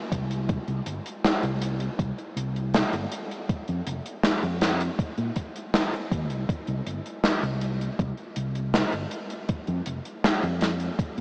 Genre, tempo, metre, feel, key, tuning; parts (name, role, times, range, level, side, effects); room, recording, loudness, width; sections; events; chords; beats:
vaporwave; 80 BPM; 4/4; straight; C minor; A4 = 440 Hz
mellow fretless electric bass; bass; 0.1-11.2 s; F1 to Bb2; -31 LUFS; equal; ensemble chorus
electronic kick drum; drums; 0.1-11.1 s; -30 LUFS; equal
gated 80s drum kit; drums; 0.1-11.2 s; hi-hat, snare drum; -30 LUFS; equal
wet huge ambient reverb, RT60 7.5 s; dreamy mix soaked in reverb, cassette tape, small speaker sound; -28 LUFS; mono
0.0-11.2 A section
| 0.49 1.24 1.99 2.74 | 3.49 4.24 4.99 5.74 | 6.49 7.24 7.99 8.74 | 9.49 10.24 10.99